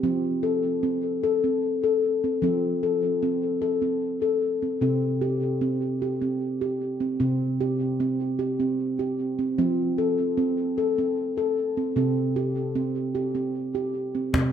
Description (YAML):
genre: world meditative, meditative tuned percussion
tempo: 76 BPM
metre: 3/4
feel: straight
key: unclear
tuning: A4 = 440 Hz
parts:
  - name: handpan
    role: arpeggios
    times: 0.0-14.5 s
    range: C3 to A4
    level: -23 LUFS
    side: equal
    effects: diffuse ambient delay
  - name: cajon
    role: percussion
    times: 14.3-14.5 s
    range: none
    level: -25 LUFS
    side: left 2 dB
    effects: none
room: wet recital hall reverb, RT60 1.4 s, small room reverb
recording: none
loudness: -23 LUFS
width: side -9 dB against mid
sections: 0.0-14.3 A section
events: none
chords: 0.0 F; 4.8 C5; 9.6 F; 12.0 C5